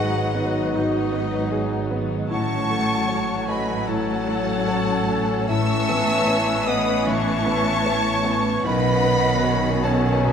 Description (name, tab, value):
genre	cinematic, emotional film score for orchestra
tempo	76 BPM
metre	4/4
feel	rubato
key	unclear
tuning	A4 = 441 Hz
part	warm studio violin section	melody	0.0-10.3 s	D#5 to E6	-28 LUFS	left 2 dB	none
part	mellow hollow silver concert flute	second line	0.0-10.3 s	F#4 to A5	-30 LUFS	left 1 dB	none
part	warm oboe	second line	0.0-10.3 s	D#4 to E5	-29 LUFS	right 2 dB	none
part	warm studio violin section	second line	0.0-10.3 s	B4 to C#6	-30 LUFS	left 1 dB	none
part	clear grand piano	accompaniment	0.0-10.3 s	B1 to C#5	-27 LUFS	left 1 dB	none
part	rich studio viola section	accompaniment	0.0-10.3 s	D#3 to D#4	-30 LUFS	left 2 dB	none
part	warm French horn section	sustained chords	0.0-10.3 s	D#3 to D#4	-29 LUFS	left 2 dB	none
part	concert harp	arpeggios	0.0-10.3 s	G#2 to F#4	-30 LUFS	left 5 dB	none
part	rich studio cello section	bass	0.0-10.3 s	G#2 to B2	-28 LUFS	right 1 dB	none
part	warm studio double bass section	bass	0.0-10.3 s	G#1 to B1	-28 LUFS	right 6 dB	none
room	wet scoring stage reverb, RT60 1.6 s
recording	none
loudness	-19 LUFS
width	side -7 dB against mid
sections	0.0-10.3 A section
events	none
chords	0.0 G#m7; 2.3 F#m/A; 5.5 Aadd9; 8.7 Badd9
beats	0.74 1.52 | 2.31 3.09 3.88 4.67 | 5.49 6.28 7.07 7.86 | 8.65 9.45 10.25